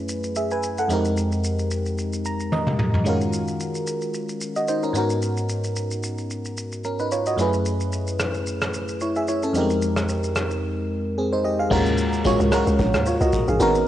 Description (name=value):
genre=amapiano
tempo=111 BPM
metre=4/4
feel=swing 55% on 16ths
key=unclear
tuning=A4 = 440 Hz
part: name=FM electric piano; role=accompaniment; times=0.0-13.9 s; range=F2 to Bb5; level=-22 LUFS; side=equal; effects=chorus, phaser
part: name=vintage brush drum kit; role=drums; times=0.1-13.9 s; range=crash cymbal, hi-hat, kick drum, rim click, shaker, toms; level=-27 LUFS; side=equal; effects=cassette tape
part: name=hollow log drum bass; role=bass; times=11.7-13.8 s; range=Ab1 to Eb2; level=-23 LUFS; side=equal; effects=none
room=light reverb, small room ambience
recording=home recording on cassette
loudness=-21 LUFS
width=side -12 dB against mid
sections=0.0-11.7 A section; 11.7-13.9 B section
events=FM electric piano fill 2.0-3.1; drum fill 2.5-3.1; drop 11.7-13.9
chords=0.0 Gbm11; 0.9 Fm11; 3.1 Ebm11; 5.0 Abm11; 7.4 Gbm11; 9.5 Fm11; 11.7 Ebm11